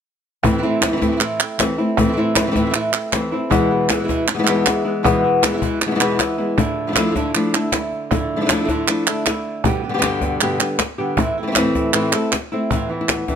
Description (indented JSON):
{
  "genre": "flamenco",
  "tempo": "156 BPM",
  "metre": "4/4",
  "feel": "straight",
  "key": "A minor",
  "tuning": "A4 = 440 Hz",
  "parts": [
    { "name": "flamenco guitar", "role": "melody", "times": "0.4-13.4 s", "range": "E2 to A4", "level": "-19 LUFS", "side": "left 2 dB", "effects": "none" },
    { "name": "flamenco guitar", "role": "stabs", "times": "0.4-13.4 s", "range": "E2 to G4", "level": "-25 LUFS", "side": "right 4 dB", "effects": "none" },
    { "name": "cajon", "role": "percussion", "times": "0.4-13.4 s", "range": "none", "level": "-23 LUFS", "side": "left 4 dB", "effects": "none" },
    { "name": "palmas hand claps", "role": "percussion", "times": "0.4-13.3 s", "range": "none", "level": "-21 LUFS", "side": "right 6 dB", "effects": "none" }
  ],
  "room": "light reverb",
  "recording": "close, detailed microphones",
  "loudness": "-16 LUFS",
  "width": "side -7 dB against mid",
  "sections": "0.4-12.7 A section",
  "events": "none",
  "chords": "0.4 Am; 3.5 E; 6.6 Dmadd9/F; 9.6 G; 11.2 Am; 12.7 Amadd9",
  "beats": "| 0.44 0.83 1.21 1.59 | 1.98 2.36 2.75 3.13 | 3.52 3.90 4.28 4.67 | 5.05 5.43 5.82 6.20 | 6.58 6.96 7.35 7.73 | 8.11 8.50 8.88 9.26 | 9.65 10.03 10.41 10.79 | 11.18 11.56 11.95 12.33 | 12.71 13.10"
}